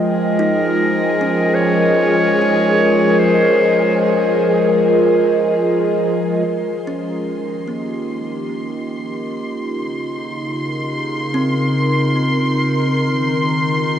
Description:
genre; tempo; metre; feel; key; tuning
ambient; 74 BPM; 4/4; straight; unclear; A4 = 442 Hz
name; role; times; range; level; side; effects
bright clarinet; melody; 0.0-4.0 s; Bb4 to Db5; -20 LUFS; right 1 dB; shimmer reverb, tape echo
warbly tape-like pad; sustained chords; 0.0-14.0 s; Db3 to G5; -16 LUFS; equal; chorus, built-in reverb, shimmer reverb
muted chamber violin section; texture; 0.0-14.0 s; Ab4 to C6; -25 LUFS; equal; shimmer reverb
kalimba; arpeggios; 0.4-13.3 s; Bb3 to Eb4; -25 LUFS; equal; shimmer reverb, tape echo
room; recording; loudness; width
wet huge ambient reverb, RT60 7.3 s; dreamy mix soaked in reverb, cassette tape, nothing above 10.9 kHz; -15 LUFS; side -9 dB against mid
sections
0.0-6.5 A section; 6.5-14.0 B section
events
fade-out on kalimba 0.0-6.5; fade-in on ambient pad 6.5-14.0; fade-in on kalimba 6.5-14.0; fade-in on violin section 6.5-14.0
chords
0.0 Bbm11/F; 6.5 Eb7; 9.7 Db6; 13.0 Eb5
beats
0.80 1.61 2.42 | 3.23 4.04 4.85 5.66 | 6.47 7.29 8.10 8.91 | 9.72 10.53 11.34 12.15 | 12.96 13.77

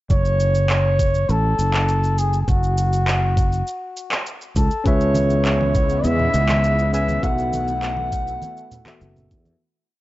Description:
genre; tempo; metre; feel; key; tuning
sunset chillout; 101 BPM; 4/4; straight; F# minor; A4 = 440 Hz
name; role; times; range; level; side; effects
mellow flugelhorn; melody; 0.1-9.3 s; F#4 to F#5; -22 LUFS; equal; none
sustaining fretless electric bass; bass; 0.1-9.5 s; F#1 to E2; -20 LUFS; equal; lush chorus
electronic cabasa and handclaps; drums; 0.1-9.6 s; none; -27 LUFS; equal; overdrive
electronic kick drum; drums; 0.1-9.4 s; none; -20 LUFS; equal; none
tine electric piano; accompaniment; 4.8-9.6 s; B3 to G#5; -28 LUFS; left 1 dB; auto-pan
lush unison pad; sustained chords; 4.9-9.6 s; C#3 to E4; -29 LUFS; equal; chorus
congas; percussion; 5.1-9.6 s; none; -31 LUFS; right 2 dB; none
room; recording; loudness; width
digital ambience; dry, gritty hardware recording, nothing above 7.7 kHz; -17 LUFS; side -17 dB against mid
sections
0.1-9.6 groove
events
fade-out 6.4-9.6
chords
0.1 F#m; 4.9 C#m7; 7.2 B7sus4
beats
| 0.10 0.69 1.29 1.88 | 2.48 3.07 3.67 4.26 | 4.85 5.45 6.04 6.64 | 7.23 7.82 8.42 9.01

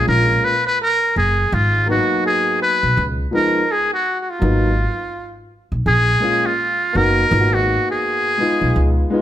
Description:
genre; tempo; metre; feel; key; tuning
hip hop, jazz-hop; 83 BPM; 4/4; swing 60% on 16ths; G# dorian; A4 = 440 Hz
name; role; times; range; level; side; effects
trumpet with metal mute; melody; 0.0-8.9 s; E#4 to B4; -17 LUFS; equal; none
dark concert grand piano; accompaniment; 0.0-9.2 s; E#3 to F#4; -21 LUFS; left 1 dB; none
upright bass; bass; 0.0-9.0 s; F#1 to C#2; -18 LUFS; equal; none
room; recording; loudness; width
moderate large studio reverb, RT60 1.5 s; band playing live in one room; -15 LUFS; side -11 dB against mid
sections
0.0-9.2 A section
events
muted trumpet solo 0.0-9.2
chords
0.1 A#m7; 1.5 G#m9; 3.0 C#9; 4.4 G#m9; 5.9 A#m7; 7.3 G#m9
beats
0.08 0.80 | 1.52 2.25 2.97 3.69 | 4.42 5.14 5.86 6.58 | 7.31 8.03 8.75

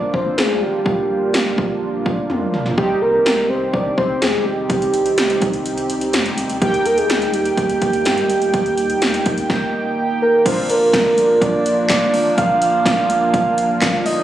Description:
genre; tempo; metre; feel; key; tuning
synth-pop; 125 BPM; 4/4; straight; unclear; A4 = 440 Hz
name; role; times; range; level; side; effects
soft octave-layered synth lead; melody; 0.0-14.2 s; G4 to F5; -17 LUFS; right 1 dB; chorus, digital delay
analog synth brass; accompaniment; 0.0-14.2 s; Bb3 to G5; -22 LUFS; right 1 dB; chorus
round analog bass; bass; 0.0-14.2 s; G1 to G2; -34 LUFS; left 1 dB; none
80s electronic pad drums; drums; 0.1-14.2 s; crash cymbal, handclaps, hi-hat, kick drum, snare drum, toms; -20 LUFS; equal; gated reverb on snare and toms, overdrive
phased analog pad; sustained chords; 10.8-14.2 s; F3 to D4; -24 LUFS; equal; phaser, chorus
room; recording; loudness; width
moderate lush hall reverb, RT60 1.9 s, digital ambience; recorded on a phone in the room, studio reverb, compression; -15 LUFS; side -12 dB against mid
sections
0.0-10.5 A section; 10.5-14.2 B section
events
drum fill 2.3-2.8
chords
0.0 Bb; 2.8 Cm; 6.6 Eb; 10.5 Bb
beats
0.38 | 0.86 1.34 1.82 2.30 | 2.78 3.26 3.74 4.22 | 4.70 5.18 5.66 6.14 | 6.62 7.10 7.58 8.06 | 8.54 9.02 9.50 9.98 | 10.46 10.94 11.42 11.90 | 12.38 12.86 13.34 13.82

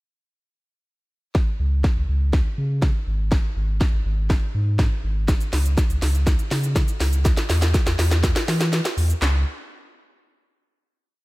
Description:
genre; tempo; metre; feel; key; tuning
dance-pop; 122 BPM; 4/4; straight; C# minor; A4 = 439 Hz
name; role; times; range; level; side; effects
house drum kit; drums; 1.3-9.3 s; handclaps, hi-hat, kick drum, shaker, snare drum; -21 LUFS; equal; none
warm sub bass; bass; 1.6-9.4 s; G#1 to E3; -21 LUFS; equal; sidechain pumping
room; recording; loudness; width
little or no reverb; none; -19 LUFS; side -20 dB against mid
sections
1.4-9.2 build; 9.2-11.2 final note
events
build-up 1.4-9.2; drum fill 1.4-9.2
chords
none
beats
| 1.35 1.84 2.33 2.83 | 3.32 3.81 4.30 4.79 | 5.29 5.78 6.27 6.76 | 7.25 7.74 8.24 8.73 | 9.22

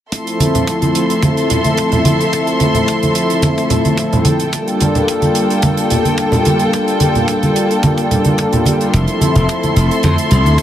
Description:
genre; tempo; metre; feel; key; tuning
nu-disco, nu disco; 109 BPM; 4/4; swing 53% on 16ths; F major; A4 = 440 Hz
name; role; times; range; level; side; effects
warm analog pad; accompaniment; 0.1-10.6 s; F3 to A4; -16 LUFS; left 1 dB; chorus, cassette tape, dub echo
warm symphonic violin section; sustained chords; 0.1-10.6 s; A4 to C6; -19 LUFS; left 1 dB; sidechain pumping
hi-hat; drums; 0.1-10.6 s; none; -24 LUFS; right 5 dB; none
kick drum; drums; 0.1-10.6 s; none; -23 LUFS; equal; high-pass filter on kick, high-pass filter on snare, high-pass filter on room
congas; percussion; 0.4-10.6 s; none; -17 LUFS; right 1 dB; dub echo
slap bass; bass; 8.9-10.6 s; F1 to F2; -12 LUFS; equal; none
room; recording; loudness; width
light reverb, studio reverb; echo-heavy mix; -12 LUFS; side -11 dB against mid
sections
0.1-10.6 A section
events
none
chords
0.1 Fmaj7; 4.3 Gm9; 8.9 Fmaj7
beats
| 0.13 0.68 1.23 1.78 | 2.33 2.88 3.43 3.98 | 4.53 5.08 5.63 6.18 | 6.73 7.28 7.83 8.38 | 8.94 9.48 10.04 10.59

